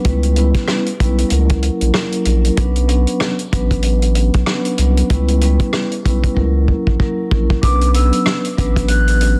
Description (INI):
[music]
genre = hip hop, boom-bap hip-hop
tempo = 95 BPM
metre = 4/4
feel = swing 59% on 16ths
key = B harmonic minor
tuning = A4 = 440 Hz
[part]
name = vibraphone with soft mallets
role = accompaniment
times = 0.0-9.4 s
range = F#3 to B4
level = -22 LUFS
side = equal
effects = cassette tape, high-pass filter, low-pass filter
[part]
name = warm soul drum kit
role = drums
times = 0.0-9.4 s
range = hi-hat, kick drum, rim click, snare drum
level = -21 LUFS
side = equal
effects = vintage 12-bit sampler grit
[part]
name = saturated sub bass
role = bass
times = 0.1-9.4 s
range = A1 to C#2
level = -17 LUFS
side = equal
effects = none
[part]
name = mellow hollow concert flute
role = melody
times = 7.6-9.4 s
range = D6 to F#6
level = -24 LUFS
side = equal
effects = high-pass filter, low-pass filter, delay
[sound]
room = studio ambience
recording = dense, heavily limited modern master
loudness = -16 LUFS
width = mono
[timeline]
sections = 0.0-7.6 A section; 7.6-9.4 B section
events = drum fill 6.4-7.6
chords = 0.1 C#m7b5; 1.3 F#7; 2.6 Bmadd9; 5.1 C#m7b5; 6.4 F#7; 7.6 Bmadd9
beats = | 0.05 0.68 1.31 1.95 | 2.58 3.21 3.84 4.47 | 5.10 5.73 6.37 7.00 | 7.63 8.26 8.89